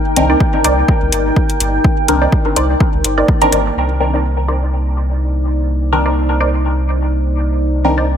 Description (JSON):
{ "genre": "dub techno", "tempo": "125 BPM", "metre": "4/4", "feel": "swing 55% on 16ths", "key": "C minor", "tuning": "A4 = 443 Hz", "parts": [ { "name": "deep dark ambient pad", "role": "sustained chords", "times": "0.0-8.2 s", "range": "Bb3 to G5", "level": "-20 LUFS", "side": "left 1 dB", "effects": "chorus, built-in reverb, sidechain pumping" }, { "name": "filtered dub chord stab", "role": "stabs", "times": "0.2-8.0 s", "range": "Eb3 to Bb4", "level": "-18 LUFS", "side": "left 1 dB", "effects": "phaser, sidechain pumping, dub echo" }, { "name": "soft dub sub bass", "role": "bass", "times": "0.2-8.2 s", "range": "G1 to C2", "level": "-16 LUFS", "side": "equal", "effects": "sidechain pumping" }, { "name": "electronic hi-hat", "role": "drums", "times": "0.2-3.6 s", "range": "none", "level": "-17 LUFS", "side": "left 2 dB", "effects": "overdrive" }, { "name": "filtered dub chord stab", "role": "riff", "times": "0.3-8.0 s", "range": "Eb4 to D5", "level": "-21 LUFS", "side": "right 3 dB", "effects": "phaser, sidechain pumping, dub echo" }, { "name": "electronic kick drum", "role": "drums", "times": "0.4-3.4 s", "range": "none", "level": "-15 LUFS", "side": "equal", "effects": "overdrive" } ], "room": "light reverb, digital ambience", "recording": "none", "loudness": "-12 LUFS", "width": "side -8 dB against mid", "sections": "0.0-3.8 A section; 3.8-8.2 B section", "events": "none", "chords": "0.0 Cm9" }